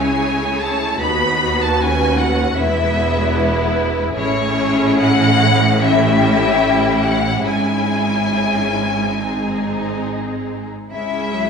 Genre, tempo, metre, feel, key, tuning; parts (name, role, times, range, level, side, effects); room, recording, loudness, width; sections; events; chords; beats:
classical, slow romantic movement for string orchestra; 67-78 BPM; 4/4; rubato; C# minor; A4 = 438 Hz
rich symphonic violin section; melody; 0.0-11.5 s; C#5 to B5; -20 LUFS; left 3 dB
warm symphonic violin section; second line; 0.0-11.5 s; D#4 to C#5; -21 LUFS; left 2 dB
rich symphonic viola section; accompaniment; 0.0-11.5 s; F#3 to E4; -22 LUFS; equal
clear symphonic double bass section; bass; 0.0-11.5 s; E1 to D#2; -23 LUFS; right 3 dB
rich studio cello section; bass; 0.0-11.5 s; C#2 to C#3; -22 LUFS; right 2 dB
wet concert hall reverb, RT60 2.0 s; -14 LUFS; side -6 dB against mid
0.0-11.5 A section
0.0 C#m; 1.0 B/D#; 2.6 E; 4.1 Amaj7; 7.4 C#m/G#; 9.2 G#; 10.9 C#m
0.24 | 1.01 1.79 2.58 3.36 | 4.14 4.98 5.79 6.59 | 7.43 8.32 9.20 10.05 | 10.90